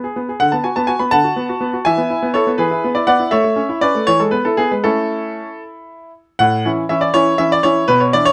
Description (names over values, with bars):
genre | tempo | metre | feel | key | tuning
classical-period piano sonatina | 80 BPM (dotted quarters) | 6/8 | rubato | A major | A4 = 440 Hz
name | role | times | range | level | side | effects
clear grand piano | solo | 0.0-8.3 s | A2 to B5 | -16 LUFS | equal | none
room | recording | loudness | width
light reverb | close, detailed microphones | -16 LUFS | mono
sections
0.0-6.4 A section; 6.4-8.3 B section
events
none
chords
0.4 Bm/D; 1.9 E; 3.3 A; 4.1 E; 4.8 A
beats
| 0.40 1.12 | 1.86 2.59 | 3.32 4.08 | 4.84 5.62 | 6.39 7.14 | 7.89